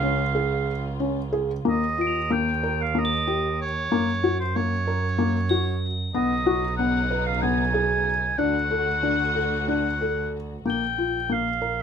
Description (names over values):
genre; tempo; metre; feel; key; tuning
contemporary instrumental, chamber music in an uneven meter; 187 BPM (eighths); 7/8; straight; unclear; A4 = 439 Hz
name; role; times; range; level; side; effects
warm oboe; melody; 0.0-11.8 s; C5 to Ab5; -26 LUFS; right 1 dB; none
dark symphonic string section; sustained chords; 0.0-1.6, 6.1-10.6 s; Db3 to F#4; -35 LUFS; left 4 dB; none
felt-muted upright piano; arpeggios; 0.0-11.8 s; Bb3 to B4; -25 LUFS; left 3 dB; none
clear double bass; bass; 0.0-11.8 s; Bb1 to Gb2; -28 LUFS; right 3 dB; none
crotales; texture; 0.0-6.4, 10.7-11.8 s; D7 to C8; -34 LUFS; left 1 dB; none
room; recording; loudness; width
little or no reverb; close, detailed microphones; -22 LUFS; side -7 dB against mid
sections
0.0-1.7 A section; 1.7-10.7 B section; 10.7-11.8 C section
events
none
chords
0.0 Db; 1.7 Ebsus2; 3.9 Gb; 6.2 Badd9; 8.4 D; 10.7 Bb5